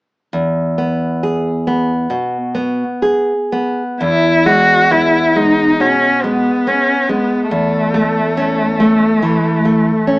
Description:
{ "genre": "romantic duo for cello and classical guitar", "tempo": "58-72 BPM", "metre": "4/4", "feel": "rubato", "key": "E major", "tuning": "A4 = 440 Hz", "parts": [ { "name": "nylon-string guitar", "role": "accompaniment", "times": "0.3-10.2 s", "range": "E2 to G#4", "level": "-15 LUFS", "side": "equal", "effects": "none" }, { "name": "rich cello", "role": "melody", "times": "4.0-10.2 s", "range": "A3 to F#4", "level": "-13 LUFS", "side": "left 1 dB", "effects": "none" } ], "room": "moderate studio reverb, RT60 0.6 s", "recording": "small speaker sound", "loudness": "-12 LUFS", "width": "side -22 dB against mid", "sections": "0.3-4.0 A section; 4.0-10.2 B section", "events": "none", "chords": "0.3 E; 7.5 A/E" }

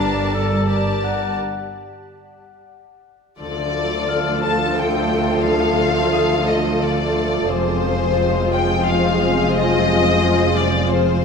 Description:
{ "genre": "cinematic, suspense film score", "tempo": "88 BPM", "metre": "3/4", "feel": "straight", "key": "D phrygian from 3.4 s", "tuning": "A4 = 441 Hz", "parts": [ { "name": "muted symphonic violin section", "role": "melody", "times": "0.0-11.2 s", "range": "C5 to A5", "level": "-22 LUFS", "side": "left 5 dB", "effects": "none" }, { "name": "bright clarinet", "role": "second line", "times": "0.0-1.4 s", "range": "D4 to A4", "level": "-26 LUFS", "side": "left 4 dB", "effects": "none" }, { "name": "muted studio violin section", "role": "second line", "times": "0.0-11.2 s", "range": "F4 to D5", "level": "-27 LUFS", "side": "left 2 dB", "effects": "none" }, { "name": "soft additive organ-like pad", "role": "sustained chords", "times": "0.0-11.2 s", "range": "F4 to A5", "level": "-26 LUFS", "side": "equal", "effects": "ensemble chorus, built-in reverb" }, { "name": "muted studio cello section", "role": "bass", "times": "0.0-11.2 s", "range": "D2 to G2", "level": "-26 LUFS", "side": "right 2 dB", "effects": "none" }, { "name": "muted studio double bass section", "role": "bass", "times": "0.0-11.2 s", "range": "F1 to D2", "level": "-24 LUFS", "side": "right 3 dB", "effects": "none" }, { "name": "concert harp", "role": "texture", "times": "0.0-11.2 s", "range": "F#5 to F#6", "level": "-31 LUFS", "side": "left 8 dB", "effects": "none" }, { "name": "muted studio viola section", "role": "accompaniment", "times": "3.4-11.2 s", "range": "D3 to C4", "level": "-24 LUFS", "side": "equal", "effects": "none" }, { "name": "mellow French horn section", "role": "sustained chords", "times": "3.4-11.2 s", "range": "Ab3 to F4", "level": "-23 LUFS", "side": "left 2 dB", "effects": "none" } ], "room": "wet scoring stage reverb, RT60 1.6 s", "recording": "none", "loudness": "-16 LUFS", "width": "side -5 dB against mid", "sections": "0.0-3.4 A section; 3.4-11.2 B section", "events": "break 1.4-3.4", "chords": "0.0 Gmadd9; 3.4 Dm; 7.5 Fm" }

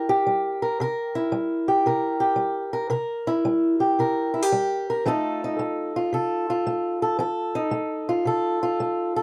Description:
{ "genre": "blues", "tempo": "112 BPM", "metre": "4/4", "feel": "swing 66% on 8ths", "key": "unclear", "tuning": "A4 = 441 Hz", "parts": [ { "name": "fingerpicked swing-style acoustic guitar", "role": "solo", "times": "0.0-9.2 s", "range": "C3 to Bb4", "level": "-24 LUFS", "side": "equal", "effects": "none" } ], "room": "moderate booth ambience, RT60 0.2 s", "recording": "dark, warm production", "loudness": "-24 LUFS", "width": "mono", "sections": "0.0-9.2 A section", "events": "none", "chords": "0.0 C7; 5.1 F7" }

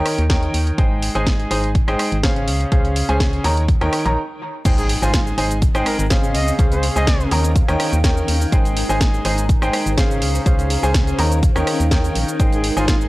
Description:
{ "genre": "piano house", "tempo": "124 BPM", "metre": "4/4", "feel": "swing 53% on 16ths", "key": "Ab major", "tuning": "A4 = 439 Hz", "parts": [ { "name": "clear grand piano", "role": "riff", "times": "0.0-13.1 s", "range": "Db3 to Bb5", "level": "-21 LUFS", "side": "equal", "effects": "sidechain pumping, tape echo" }, { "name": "organ-like FM bass", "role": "bass", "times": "0.0-13.1 s", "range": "Ab1 to Eb2", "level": "-21 LUFS", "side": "equal", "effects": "sidechain pumping" }, { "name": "house drum kit", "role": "drums", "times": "0.1-13.1 s", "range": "cabasa, crash cymbal, hi-hat, rim click, snare drum", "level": "-25 LUFS", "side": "equal", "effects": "none" }, { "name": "electronic kick drum", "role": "drums", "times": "0.3-13.0 s", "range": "none", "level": "-17 LUFS", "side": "equal", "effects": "none" }, { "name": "impact", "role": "sound effects", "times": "4.7-6.6 s", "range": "none", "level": "-28 LUFS", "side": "equal", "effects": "none" }, { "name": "granular cloud pad", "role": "texture", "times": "5.8-13.1 s", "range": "C4 to Bb5", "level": "-27 LUFS", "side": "left 1 dB", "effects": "built-in reverb, sidechain pumping" }, { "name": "mellow trumpet", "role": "melody", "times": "4.8-7.3, 12.5-13.0 s", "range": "F4 to Eb5", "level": "-27 LUFS", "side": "equal", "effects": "tape echo" } ], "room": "little or no reverb", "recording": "dry, gritty hardware recording, cassette tape", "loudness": "-15 LUFS", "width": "side -19 dB against mid", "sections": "0.0-4.7 A section; 4.7-13.1 B section", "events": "stop 4.2-4.7; drop 4.7-13.1; impact 4.7-6.6", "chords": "0.0 Eb7; 0.8 Abmaj7; 2.5 Dbmaj7; 3.4 Eb7; 4.7 Abmaj7; 6.3 Dbmaj7; 7.3 Eb7; 8.5 Abmaj7; 10.2 Dbmaj7; 11.2 Eb7; 12.4 Abmaj7" }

